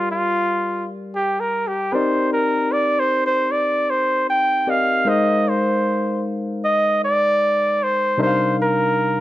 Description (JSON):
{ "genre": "soul", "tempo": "77 BPM", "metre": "4/4", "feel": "straight", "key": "unclear", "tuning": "A4 = 440 Hz", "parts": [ { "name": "warm flugelhorn", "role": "melody", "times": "0.0-9.2 s", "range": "F4 to G5", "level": "-18 LUFS", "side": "right 1 dB", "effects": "none" }, { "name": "barky tine electric piano", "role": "accompaniment", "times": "0.0-9.2 s", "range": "C3 to F5", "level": "-23 LUFS", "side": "left 2 dB", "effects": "overdrive" } ], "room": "light reverb, small room ambience", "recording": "none", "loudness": "-17 LUFS", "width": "side -15 dB against mid", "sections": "0.0-5.1 A section; 5.1-9.2 B section", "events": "flugelhorn solo 0.0-5.1", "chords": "0.0 Gm7; 1.9 Cm7; 5.1 Ab69; 8.2 Cm11", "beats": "0.38 1.16 | 1.94 2.72 3.50 4.28 | 5.06 5.84 6.62 7.40 | 8.18 8.96" }